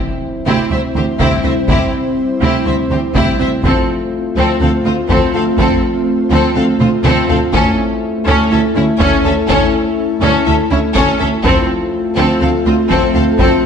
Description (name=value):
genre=cinematic, hybrid orchestral and electronic film score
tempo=123 BPM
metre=4/4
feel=straight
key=unclear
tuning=A4 = 442 Hz
part: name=dark French horn section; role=sustained chords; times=0.0-13.7 s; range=A3 to F4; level=-20 LUFS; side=left 5 dB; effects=none
part: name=ethereal airy pad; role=sustained chords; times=0.3-13.7 s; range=G3 to C5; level=-19 LUFS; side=right 1 dB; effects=ensemble chorus, built-in reverb
part: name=impact and reverse cymbal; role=sound effects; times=0.0-1.7, 13.4-13.7 s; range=none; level=-27 LUFS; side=left 1 dB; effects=none
part: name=rich studio violin section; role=melody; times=0.5-13.6 s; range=G4 to F5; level=-22 LUFS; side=left 1 dB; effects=none
part: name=bright symphonic violin section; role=second line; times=0.5-13.6 s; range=C4 to C5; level=-20 LUFS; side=left 3 dB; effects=none
part: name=clear symphonic viola section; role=accompaniment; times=0.5-13.6 s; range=C4 to C#4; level=-20 LUFS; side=equal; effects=none
part: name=thumb-piano-like synth pluck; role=arpeggios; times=0.5-13.5 s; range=C3 to A4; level=-23 LUFS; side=right 2 dB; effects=chorus, tape echo
part: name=rich symphonic cello section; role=bass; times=0.5-13.5 s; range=D2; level=-20 LUFS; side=right 3 dB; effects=none
part: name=rich symphonic double bass section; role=bass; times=0.5-13.5 s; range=D2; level=-20 LUFS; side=right 3 dB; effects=none
part: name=taiko ensemble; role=drums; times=1.2-13.7 s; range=none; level=-20 LUFS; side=equal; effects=none
room=wet scoring stage reverb, RT60 1.5 s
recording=nothing above 10.7 kHz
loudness=-11 LUFS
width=side -7 dB against mid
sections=0.0-13.7 A section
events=impact 0.0-1.7; drum fill 6.8-7.5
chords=0.0 C/D; 3.6 F/D; 7.5 A/D; 11.4 Dm7